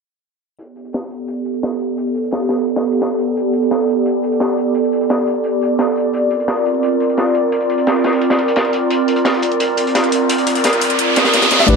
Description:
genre	liquid drum and bass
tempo	173 BPM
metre	4/4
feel	straight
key	unclear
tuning	A4 = 440 Hz
part	airy breathy pad	sustained chords	0.6-11.8 s	G3 to D5	-16 LUFS	right 1 dB	chorus
part	crunchy breakbeat drum kit	drums	0.6-11.7 s	hi-hat, snare drum	-21 LUFS	left 1 dB	high-pass filter on hats, high-pass filter on snare, high-pass filter on room
part	electronic hi-hat	drums	0.6-11.8 s	none	-26 LUFS	left 4 dB	none
part	riser	sound effects	9.9-11.8 s	none	-17 LUFS	equal	none
part	bright grand piano	melody	11.6-11.8 s	D5 to E5	-16 LUFS	right 2 dB	none
part	tine electric piano	accompaniment	11.7-11.8 s	A3 to B4	-13 LUFS	left 4 dB	auto-pan, low-pass filter
part	swelling detuned saw bass	bass	11.7-11.8 s	A1	-12 LUFS	left 1 dB	tube saturation
room	moderate plate reverb, RT60 1.6 s, small room ambience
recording	low-pass filter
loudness	-14 LUFS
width	side -4 dB against mid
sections	0.6-11.7 A section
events	filter sweep on analog synth pad 0.6-11.7; filter sweep 0.6-11.7; riser 9.9-11.7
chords	0.6 A9sus4; 6.1 C9sus4

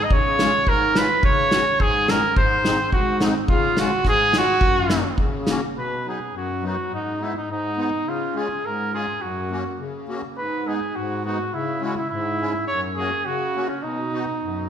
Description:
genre	alpine folk, alpine dance band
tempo	105 BPM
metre	2/4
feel	straight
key	F# major, B major from 5.8 s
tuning	A4 = 440 Hz
part	clear trumpet	melody	0.0-14.7 s	C#4 to D#5	-22 LUFS	right 1 dB	none
part	musette accordion	accompaniment	0.1-14.7 s	F#2 to F#4	-26 LUFS	left 2 dB	none
part	loose indie drum kit	drums	0.1-5.6 s	kick drum, snare drum	-22 LUFS	equal	none
room	moderate scoring stage reverb, RT60 1.7 s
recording	recorded in a church or concert hall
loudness	-19 LUFS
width	side -9 dB against mid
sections	0.0-5.8 A section; 5.8-14.7 B section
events	none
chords	0.1 C#; 1.2 C#sus4; 2.4 G#; 3.5 C#; 4.6 F#; 5.8 B; 6.9 G#m; 8.1 C#; 9.2 F#; 10.4 G#m; 11.5 C#m; 12.7 F#; 13.8 B

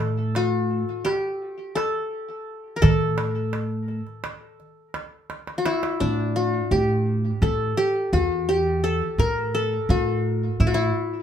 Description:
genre	Turkish makam ensemble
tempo	170 BPM (eighths)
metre	9/8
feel	straight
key	A makam hicaz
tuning	A4 = 438 Hz
part	qanun	melody	0.0-11.2 s	D4 to Bb4	-24 LUFS	left 2 dB	tape echo
part	upright bass	bass	0.0-10.9 s	E2 to A2	-24 LUFS	right 1 dB	none
part	darbuka	percussion	0.0-6.0 s	none	-26 LUFS	right 2 dB	none
room	wet studio reverb, RT60 0.6 s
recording	heard from further back in the room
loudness	-21 LUFS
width	side -9 dB against mid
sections	0.0-6.0 A section; 6.0-11.2 B section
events	drum fill 5.3-6.0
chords	none

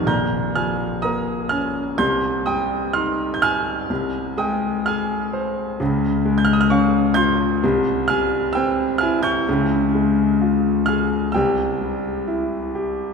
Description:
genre	classical, lyrical solo piano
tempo	64 BPM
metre	4/4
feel	rubato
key	unclear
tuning	A4 = 445 Hz
part	clear grand piano	solo	0.0-13.1 s	Bb1 to G6	-18 LUFS	equal	none
room	wet church reverb, RT60 3.2 s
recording	recorded in a church or concert hall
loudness	-18 LUFS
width	side -5 dB against mid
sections	0.1-13.1 A section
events	none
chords	0.1 Bbm; 2.0 Cm; 5.8 Db; 7.6 C; 9.5 Db; 11.4 C

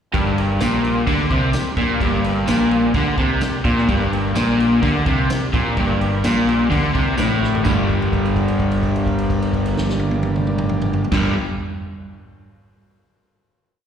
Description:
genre	garage rock duo or trio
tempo	128 BPM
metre	4/4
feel	straight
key	G minor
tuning	A4 = 441 Hz
part	overdriven combo organ	sustained chords	0.1-11.3 s	G4 to Bb5	-31 LUFS	equal	none
part	crunchy overdriven guitar	riff	0.1-11.3 s	G2 to G3	-18 LUFS	equal	slapback echo
part	fuzz fingered electric bass	bass	0.1-11.3 s	G1 to D2	-23 LUFS	equal	overdrive
part	vintage drum kit	drums	0.1-11.2 s	crash cymbal, kick drum, snare drum, toms	-24 LUFS	equal	none
part	tambourine	percussion	0.6-7.9 s	none	-38 LUFS	right 2 dB	none
room	small room ambience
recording	live gig heard through the venue's PA, recital hall reverb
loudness	-16 LUFS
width	side -8 dB against mid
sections	0.1-7.7 riff; 7.7-11.4 final chord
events	transistor combo organ fill 2.9-3.9; drum fill 7.4; held note 7.7-11.1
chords	0.1 Gm

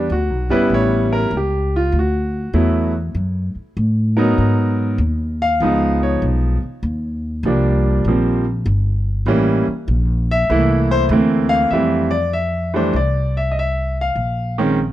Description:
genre	jazz piano trio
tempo	98 BPM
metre	4/4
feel	swing 67% on 8ths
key	F major from 11.7 s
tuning	A4 = 440 Hz
part	bright concert grand piano	melody	0.0-14.8 s	Eb3 to F5	-17 LUFS	equal	none
part	upright bass	bass	0.0-14.9 s	G1 to A2	-19 LUFS	equal	none
room	small room ambience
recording	dry, close 1970s-style studio recording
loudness	-15 LUFS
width	side -14 dB against mid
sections	0.0-11.7 A section; 11.7-14.9 B section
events	grand piano solo 0.0-11.7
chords	0.0 Em7; 0.7 A7; 1.9 D69; 4.4 G#m7; 5.6 C#9; 6.8 Ebmaj7; 9.3 A7b9; 10.5 C13; 11.7 Fmaj9; 14.2 Bbm11

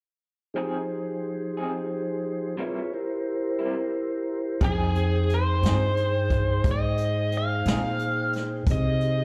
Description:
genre	slow blues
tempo	59 BPM (dotted quarters)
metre	12/8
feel	straight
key	F minor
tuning	A4 = 442 Hz
part	mellow tonewheel organ	sustained chords	0.5-9.2 s	F3 to G5	-32 LUFS	equal	slow rotary speaker
part	electric guitar through a small old amp	accompaniment	0.6-7.9 s	C3 to Ab4	-37 LUFS	equal	tremolo, slapback echo
part	biting lead guitar	melody	4.6-9.2 s	Ab4 to F5	-30 LUFS	equal	overdrive, slapback echo
part	upright bass	bass	4.6-9.2 s	F2 to C3	-28 LUFS	equal	none
part	jazz brush drum kit	drums	4.6-9.2 s	hi-hat, kick drum, snare drum	-29 LUFS	equal	none
room	little or no reverb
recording	live gig heard through the venue's PA, club reverb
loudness	-26 LUFS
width	mono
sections	0.5-4.6 A section; 4.6-9.2 B section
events	none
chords	0.5 Fm7; 2.6 C7; 4.6 Fm7

